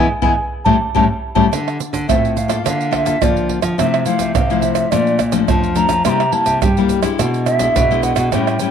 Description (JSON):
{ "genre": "samba and choro", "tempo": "106 BPM", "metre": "4/4", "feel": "straight", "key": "D minor", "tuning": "A4 = 440 Hz", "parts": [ { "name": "breathy mellow wooden flute", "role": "melody", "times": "0.0-8.7 s", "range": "D5 to C6", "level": "-19 LUFS", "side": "right 2 dB", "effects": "none" }, { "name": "nylon-string guitar", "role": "accompaniment", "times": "0.0-8.7 s", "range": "F2 to A4", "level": "-19 LUFS", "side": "left 10 dB", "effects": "none" }, { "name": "nylon-string guitar", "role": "bass", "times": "0.0-8.6 s", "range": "A2 to G3", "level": "-20 LUFS", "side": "right 1 dB", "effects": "none" }, { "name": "surdo, egg shaker, pandeiro and tamborim", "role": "percussion", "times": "0.2-8.7 s", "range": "none", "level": "-20 LUFS", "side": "right 5 dB", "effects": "none" } ], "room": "wet spring reverb, RT60 1.1 s, small room ambience", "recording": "1960s-style stereo", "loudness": "-14 LUFS", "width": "side -8 dB against mid", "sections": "0.0-1.5 A section; 1.5-8.7 B section", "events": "band accent 0.0-1.5; flute solo 1.5-8.7", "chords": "0.4 A7; 1.5 Dm7; 2.7 Bbmaj7/D; 3.8 Fmaj7/C; 4.9 Bbmaj7; 6.1 C7; 7.2 E7/B" }